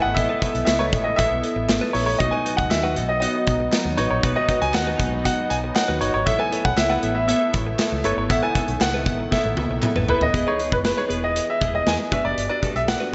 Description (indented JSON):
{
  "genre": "1980s-style pop",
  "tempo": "118 BPM",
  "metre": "4/4",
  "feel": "straight",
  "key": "unclear",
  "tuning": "A4 = 440 Hz",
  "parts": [
    { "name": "clear baby grand piano", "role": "melody", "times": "0.0-13.1 s", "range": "B4 to G#5", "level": "-26 LUFS", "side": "equal", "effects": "slapback echo, delay" },
    { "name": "glassy digital keys", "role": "accompaniment", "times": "0.0-13.1 s", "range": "G2 to F#5", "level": "-28 LUFS", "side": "equal", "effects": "chorus, slapback echo" },
    { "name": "sweeping resonant pad", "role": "sustained chords", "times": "0.0-10.3 s", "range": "D#3 to E4", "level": "-34 LUFS", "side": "equal", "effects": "chorus" },
    { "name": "direct-recorded clean electric guitar", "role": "riff", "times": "0.0-13.1 s", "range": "D4 to B4", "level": "-34 LUFS", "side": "equal", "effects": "subtle chorus, slapback echo" },
    { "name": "vintage muted fingered electric bass", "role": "bass", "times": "0.0-12.9 s", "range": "D#1 to E2", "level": "-31 LUFS", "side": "equal", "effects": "none" },
    { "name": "big rock drum kit", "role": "drums", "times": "0.2-13.0 s", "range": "hi-hat, kick drum, snare drum, tambourine, toms", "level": "-27 LUFS", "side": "equal", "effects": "none" },
    { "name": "group handclap", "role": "percussion", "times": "0.7-9.9 s", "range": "none", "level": "-41 LUFS", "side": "equal", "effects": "none" }
  ],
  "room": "wet lush hall reverb, RT60 1.7 s",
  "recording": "big arena sound, nothing above 7.9 kHz",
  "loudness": "-21 LUFS",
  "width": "mono",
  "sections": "0.0-10.3 A section; 10.3-13.1 B section",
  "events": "drum fill 9.3-10.3",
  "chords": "0.0 Asus2; 2.2 B; 6.3 Asus2; 10.3 Emaj7; 12.1 Gmaj7"
}